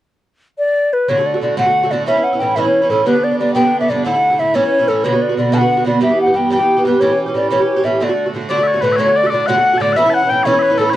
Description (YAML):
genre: celtic folk, Celtic jig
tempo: 122 BPM (dotted quarters)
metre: 6/8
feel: straight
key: D major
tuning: A4 = 436 Hz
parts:
  - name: hollow wooden flute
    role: melody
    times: 0.6-11.0 s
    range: A4 to A5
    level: -15 LUFS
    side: left 2 dB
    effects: none
  - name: Irish bouzouki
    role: accompaniment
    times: 1.1-11.0 s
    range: G2 to G4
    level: -16 LUFS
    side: right 3 dB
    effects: none
  - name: mellow small bagpipes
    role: second line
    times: 8.5-11.0 s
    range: A4 to A5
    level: -19 LUFS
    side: left 5 dB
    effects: none
room: small room ambience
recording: dry, close 1970s-style studio recording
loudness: -12 LUFS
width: side -13 dB against mid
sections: 1.1-9.0 A section; 9.0-11.0 A section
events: none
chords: 0.1 N.C.; 1.1 D; 2.1 A; 3.1 G; 4.0 Asus4; 4.5 A; 5.0 Bm; 6.0 Em; 7.0 A7; 8.0 D; 10.0 A